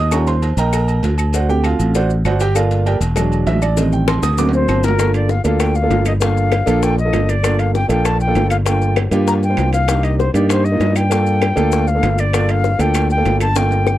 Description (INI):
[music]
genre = Afro-Cuban jazz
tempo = 196 BPM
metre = 4/4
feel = straight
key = G minor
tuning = A4 = 441 Hz
[part]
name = warm concert grand piano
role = accompaniment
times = 0.0-13.9 s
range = Eb3 to Eb6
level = -19 LUFS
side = right 2 dB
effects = none
[part]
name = modern bright fingered electric bass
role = bass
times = 0.0-14.0 s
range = E1 to G2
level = -16 LUFS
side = equal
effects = none
[part]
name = agogo bells and timbales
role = percussion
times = 0.1-13.8 s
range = none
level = -27 LUFS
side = right 7 dB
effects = none
[part]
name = claves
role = percussion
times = 0.1-14.0 s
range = none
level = -29 LUFS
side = left 10 dB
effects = none
[part]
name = cowbell and bongos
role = percussion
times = 0.1-14.0 s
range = none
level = -25 LUFS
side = left 8 dB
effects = none
[part]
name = maracas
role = percussion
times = 0.1-14.0 s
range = none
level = -32 LUFS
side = left 10 dB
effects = none
[part]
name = silver concert flute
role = melody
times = 4.5-14.0 s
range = A#4 to Bb5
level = -20 LUFS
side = left 2 dB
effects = none
[sound]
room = little or no reverb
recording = dry, close 1970s-style studio recording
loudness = -13 LUFS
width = side -14 dB against mid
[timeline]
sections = 0.0-5.0 A section; 5.0-14.0 B section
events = grand piano solo 0.0-5.0; drum fill 4.1-5.0, 13.6-14.0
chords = 0.1 Eb7; 1.3 D7; 2.6 Gm7; 3.2 E7; 3.8 Am7b5; 4.4 Daug7; 5.0 Gm7; 9.9 Cm7; 11.1 Gm7